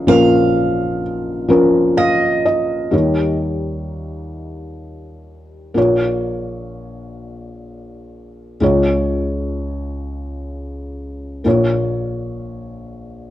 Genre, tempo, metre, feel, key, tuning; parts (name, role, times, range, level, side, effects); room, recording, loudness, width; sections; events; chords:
acoustic folk-pop ballad; 42 BPM (dotted quarters); 6/8; straight; Bb minor; A4 = 442 Hz
felt-muted upright piano; melody; 0.0-13.3 s; Bb1 to F5; -17 LUFS; left 1 dB
picked steel-string acoustic guitar; arpeggios; 0.1-3.4 s; Eb5 to F5; -21 LUFS; right 5 dB
moderate large studio reverb, RT60 1.1 s; worn, warbling old tape, cassette tape, warbly pitch drift; -15 LUFS; side -13 dB against mid
0.0-2.9 A section; 2.9-13.3 B section
felt piano fill 1.5-2.9, 12.9-13.3
0.0 Bbm; 8.6 Db; 11.5 Bbm